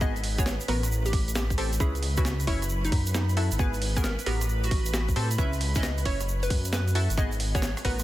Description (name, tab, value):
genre	UK garage, two-step garage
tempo	134 BPM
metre	4/4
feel	swing 67% on 16ths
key	C# minor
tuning	A4 = 440 Hz
part	hollow square pluck	melody	0.0-8.0 s	D#4 to E5	-35 LUFS	equal	chorus, tape echo
part	soft string machine	sustained chords	0.0-8.0 s	B4 to B5	-40 LUFS	equal	phaser, ensemble chorus, sidechain pumping
part	punchy chord stab	stabs	0.0-8.0 s	B3 to C#5	-34 LUFS	equal	chorus, tape echo
part	dark detuned saw bass	bass	0.0-8.0 s	F#1 to A2	-28 LUFS	equal	sidechain pumping
part	electronic kick drum	drums	0.0-8.0 s	none	-27 LUFS	equal	overdrive, studio reverb
part	egg shaker	percussion	0.0-8.0 s	none	-39 LUFS	right 3 dB	none
part	breakbeat sampler-style drum kit	drums	0.2-8.0 s	hi-hat, rim click, snare drum	-34 LUFS	right 1 dB	studio reverb
room	digital ambience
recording	dense, heavily limited modern master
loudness	-24 LUFS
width	side -15 dB against mid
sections	0.0-8.0 A section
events	none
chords	0.0 G#m7; 0.9 Am7; 1.8 C#m7; 2.7 F#m7; 3.6 G#m7; 4.5 Am7; 5.4 C#m7; 6.3 F#m7; 7.2 G#m7